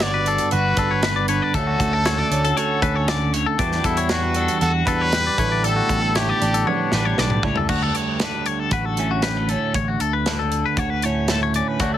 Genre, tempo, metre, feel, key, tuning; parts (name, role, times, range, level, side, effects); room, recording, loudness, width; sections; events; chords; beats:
math rock and midwest emo; 117 BPM; 4/4; straight; A4 = 440 Hz
bright trumpet; melody; 0.0-7.4 s; D4 to D5; -24 LUFS; equal
twelve-string electric guitar; accompaniment; 0.0-12.0 s; D2 to F#4; -25 LUFS; right 5 dB; spring reverb
twangy electric guitar; arpeggios; 0.0-12.0 s; F#4 to D5; -24 LUFS; left 9 dB
fingered electric bass; bass; 0.0-12.0 s; G1 to E2; -24 LUFS; equal
modern studio drum kit; drums; 0.0-11.9 s; crash cymbal, hi-hat, kick drum, snare drum, toms; -25 LUFS; equal
little or no reverb; heavily compressed radio sound, multiband compression; -18 LUFS; side -11 dB against mid
0.0-7.7 A section; 7.7-12.0 B section
drum fill 6.7-7.7
0.0 Gmaj7; 1.6 Dmaj7; 3.6 Em9; 5.4 A9sus4
0.02 0.53 1.04 | 1.55 2.06 2.57 3.08 | 3.60 4.11 4.62 5.13 | 5.64 6.15 6.67 7.18 | 7.69 8.20 8.72 9.23 | 9.75 10.26 10.78 11.29 | 11.81